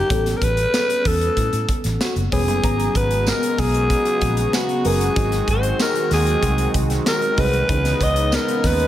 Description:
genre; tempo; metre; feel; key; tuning
polished 1980s jazz-funk pop; 95 BPM; 4/4; straight; unclear; A4 = 440 Hz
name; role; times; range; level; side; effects
breathy alto saxophone; melody; 0.0-8.9 s; F#4 to D#5; -21 LUFS; left 1 dB; none
FM electric piano with soft pad layer; accompaniment; 0.0-8.9 s; E3 to A#5; -27 LUFS; left 2 dB; phaser, wide subtle chorus
vintage muted fingered electric bass; bass; 0.1-8.9 s; E1 to A2; -22 LUFS; right 1 dB; none
modern studio drum kit; drums; 0.1-8.9 s; hi-hat, kick drum, snare drum; -24 LUFS; equal; none
tambourine; percussion; 0.7-8.5 s; none; -33 LUFS; right 8 dB; none
warm analog pad; sustained chords; 2.6-8.9 s; C#3 to F#4; -25 LUFS; right 2 dB; chorus
room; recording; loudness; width
moderate plate reverb, RT60 2.2 s; dreamy mix soaked in reverb; -17 LUFS; side -12 dB against mid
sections
0.0-8.9 A section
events
none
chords
0.1 A9; 2.6 G#m11; 5.2 G#7; 7.7 C#m9

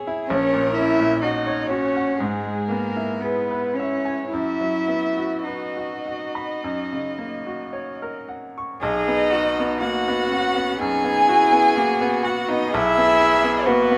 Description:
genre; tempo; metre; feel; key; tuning
classical, slow romantic movement for piano quartet; 51-65 BPM; 4/4; rubato; B major; A4 = 438 Hz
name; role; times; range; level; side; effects
dark violin; melody; 0.0-14.0 s; E4 to G#5; -26 LUFS; equal; none
bright baby grand piano; accompaniment; 0.0-14.0 s; A#1 to C#6; -28 LUFS; equal; none
dark violin; second line; 0.3-14.0 s; B3 to E5; -27 LUFS; equal; none
warm cello; second line; 0.3-14.0 s; G#3 to G#4; -28 LUFS; equal; none
room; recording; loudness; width
light reverb; none; -21 LUFS; mono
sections
0.0-8.8 A section; 8.8-14.0 B section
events
none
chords
0.3 F#/A#; 2.2 E/G#; 4.3 B/F#; 6.6 F#; 8.8 B; 12.7 E/B

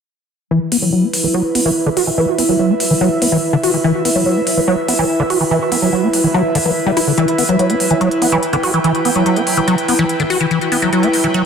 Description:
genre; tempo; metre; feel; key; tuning
psychedelic trance; 144 BPM; 4/4; straight; E minor; A4 = 440 Hz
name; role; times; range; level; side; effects
liquid acid bass; riff; 0.5-11.4 s; D3 to F#4; -15 LUFS; moving between left 4 dB and right 3 dB; phaser, auto-pan, digital delay
airy breathy pad; texture; 0.5-11.5 s; E4 to G5; -18 LUFS; right 1 dB; chorus
electronic hi-hat; drums; 0.7-11.4 s; none; -20 LUFS; equal; overdrive, studio reverb
room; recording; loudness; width
wet digital room reverb, RT60 1.2 s; dense, heavily limited modern master; -13 LUFS; side -6 dB against mid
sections
0.5-11.5 A section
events
filter sweep on acid bass 0.5-11.5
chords
0.5 E5

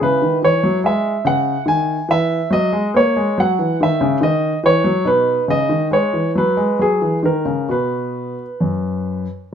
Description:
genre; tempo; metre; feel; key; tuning
classical, baroque-style suite movement for grand piano; 70 BPM; 3/4; uneven beats, rubato; B major; A4 = 440 Hz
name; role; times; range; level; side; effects
warm grand piano; solo; 0.0-9.3 s; F#2 to G#5; -15 LUFS; equal; none
room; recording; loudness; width
moderate stone room reverb, RT60 1.0 s; none; -15 LUFS; side -8 dB against mid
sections
0.0-9.5 A section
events
none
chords
0.0 C#m; 2.5 F#5; 5.1 B; 5.9 G#m; 6.8 F#7; 7.7 B5

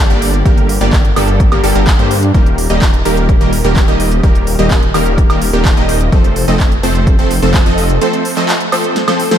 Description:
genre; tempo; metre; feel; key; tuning
EDM, festival progressive house; 127 BPM; 4/4; straight; unclear; A4 = 440 Hz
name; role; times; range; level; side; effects
wide detuned saw bass; bass; 0.0-8.0 s; Eb1 to G2; -15 LUFS; equal; chorus, sidechain pumping
supersaw stab; riff; 0.1-9.4 s; D3 to Eb5; -14 LUFS; right 1 dB; wide subtle chorus, sidechain pumping, ping-pong delay
big-room dance drum kit; drums; 0.1-9.4 s; handclaps, hi-hat, snare drum, woodblock; -19 LUFS; right 1 dB; none
electronic kick drum; drums; 0.5-7.6 s; none; -11 LUFS; equal; none
room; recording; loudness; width
light reverb; none; -9 LUFS; side -10 dB against mid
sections
0.0-9.4 A section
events
drum fill 9.0-9.4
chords
0.0 Gm; 2.3 Eb; 6.1 F

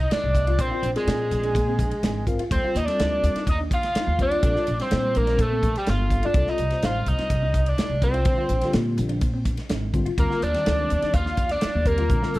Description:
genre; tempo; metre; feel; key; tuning
electric jazz fusion; 125 BPM; 4/4; straight; unclear; A4 = 440 Hz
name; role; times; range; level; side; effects
overdriven synth lead; melody; 0.0-12.4 s; G4 to F5; -26 LUFS; equal; distortion
crunchy overdriven guitar; second line; 0.0-12.4 s; G3 to F4; -31 LUFS; right 2 dB; none
upright bass; bass; 0.0-12.4 s; G1 to Bb2; -25 LUFS; equal; none
mellow electric guitar; stabs; 0.1-12.4 s; C4 to F4; -34 LUFS; left 3 dB; wide subtle chorus
modern studio drum kit; drums; 0.1-12.4 s; hi-hat, kick drum, ride cymbal, snare drum; -26 LUFS; equal; none
tine electric piano; accompaniment; 0.4-12.3 s; D3 to F5; -30 LUFS; left 2 dB; medium tremolo, phaser
room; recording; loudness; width
small room ambience; dark, warm production; -20 LUFS; side -18 dB against mid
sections
0.0-12.4 A section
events
drum fill 12.1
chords
0.0 Cm69; 0.6 Bb9; 2.5 Ebmaj9; 4.4 Bb6; 6.4 Cm69; 8.3 Bb13; 10.2 Ebmaj9

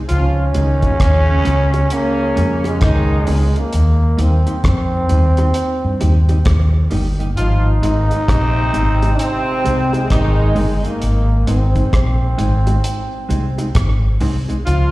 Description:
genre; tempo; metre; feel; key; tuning
roots reggae; 66 BPM; 4/4; swing 62% on 16ths; Ab major; A4 = 440 Hz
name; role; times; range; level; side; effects
growling trombone; melody; 0.1-14.9 s; Ab3 to F4; -21 LUFS; right 1 dB; tape echo, slapback echo
mellow horn section; second line; 0.1-14.9 s; C3 to F4; -22 LUFS; left 1 dB; tape echo, slapback echo
vintage muted fingered electric bass; bass; 0.1-14.9 s; G1 to G2; -15 LUFS; equal; none
cloth-damped thuddy drum kit; drums; 0.1-14.9 s; hi-hat, kick drum, rim click; -19 LUFS; equal; none
mellow electric guitar; accompaniment; 0.5-14.6 s; G3 to Ab4; -27 LUFS; equal; tape echo, slapback echo
bongos; percussion; 1.7-14.5 s; none; -32 LUFS; right 3 dB; none
room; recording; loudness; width
studio reverb; live gig heard through the venue's PA, recital hall reverb; -13 LUFS; side -18 dB against mid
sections
0.0-14.9 A section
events
none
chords
0.1 Db; 3.7 Eb; 7.4 Ab

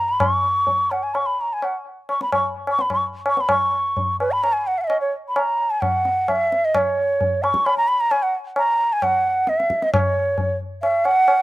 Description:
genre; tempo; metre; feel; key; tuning
indian classical, Hindustani; 130 BPM; 7/4; straight; C# raga bhimpalasi; A4 = 444 Hz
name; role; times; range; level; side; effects
hollow bansuri; melody; 0.0-11.4 s; B4 to C#6; -18 LUFS; right 1 dB; slapback echo
tabla; percussion; 0.2-11.4 s; none; -24 LUFS; left 1 dB; none
room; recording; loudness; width
little or no reverb; recorded outdoors, with no room sound; -18 LUFS; side -18 dB against mid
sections
0.0-3.5 A section; 3.5-11.4 B section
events
speeding up 0.0-11.4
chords
none

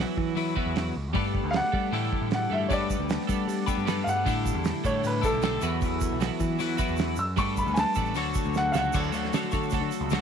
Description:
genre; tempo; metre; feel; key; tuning
indie rock; 154 BPM; 4/4; straight; A mixolydian; A4 = 440 Hz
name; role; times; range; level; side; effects
twelve-string electric guitar; riff; 0.0-10.2 s; A2 to C#5; -31 LUFS; left 15 dB; none
twelve-string electric guitar; riff; 0.0-10.2 s; E2 to A4; -32 LUFS; right 14 dB; analog chorus
growling picked electric bass; bass; 0.0-10.2 s; A1 to G3; -31 LUFS; equal; overdrive
cloth-damped thuddy drum kit; drums; 0.0-10.2 s; crash cymbal, hi-hat, kick drum, snare drum; -31 LUFS; right 2 dB; none
bright upright piano; melody; 1.5-8.9 s; A4 to E6; -30 LUFS; equal; none
egg shaker; percussion; 2.7-10.2 s; none; -45 LUFS; right 14 dB; none
room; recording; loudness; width
light reverb, studio ambience; 1960s-style stereo with parts hard left and right; -24 LUFS; side -7 dB against mid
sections
0.0-8.9 A section; 8.9-10.2 B section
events
upright piano solo 0.0-8.9; drum fill 8.6-8.9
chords
0.0 Esus2; 1.1 Gadd9; 1.9 A7sus4; 2.7 Gadd9; 4.3 A7sus4; 5.6 Esus2; 7.4 Gadd9; 8.2 Dmaj7

